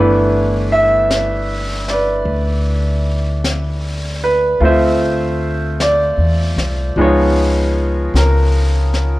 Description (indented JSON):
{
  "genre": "jazz ballad",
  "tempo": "51 BPM",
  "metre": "4/4",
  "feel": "swing 66% on 8ths",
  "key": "G major",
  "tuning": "A4 = 436 Hz",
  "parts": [
    { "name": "bright upright piano", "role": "accompaniment", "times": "0.0-9.2 s", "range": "E3 to E5", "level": "-16 LUFS", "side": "equal", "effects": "none" },
    { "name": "upright bass", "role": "bass", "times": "0.0-9.2 s", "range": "G1 to E2", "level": "-17 LUFS", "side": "equal", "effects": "none" },
    { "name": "jazz brush drum kit", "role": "drums", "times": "1.1-9.2 s", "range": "brushed snare drum, hi-hat, snare drum", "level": "-26 LUFS", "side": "left 2 dB", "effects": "none" }
  ],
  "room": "little or no reverb",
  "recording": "worn, warbling old tape, cassette tape, warbly pitch drift",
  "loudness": "-13 LUFS",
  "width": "side -18 dB against mid",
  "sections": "0.0-9.2 A section",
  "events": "none",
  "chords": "0.0 G69; 4.6 Dm9; 7.0 C#9"
}